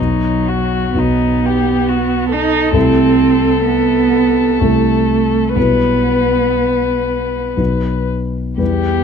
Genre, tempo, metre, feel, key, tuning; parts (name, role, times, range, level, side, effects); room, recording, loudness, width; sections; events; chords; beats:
classical, slow romantic movement for piano trio; 58-70 BPM; 3/4; rubato; A4 = 440 Hz
muted violin; melody; 0.0-9.0 s; D#4 to B4; -18 LUFS; left 10 dB
muted cello; second line; 0.0-9.0 s; F#3 to D#4; -16 LUFS; right 9 dB
dark concert grand piano; accompaniment; 0.0-9.0 s; B1 to B4; -17 LUFS; left 2 dB
light reverb; close, detailed microphones; -12 LUFS; side -7 dB against mid
0.0-9.0 A section
0.0 B; 2.8 Am/C; 5.6 Em/B; 7.6 B
0.97 1.88 | 2.75 3.68 4.61 | 5.56 6.57 7.59 | 8.60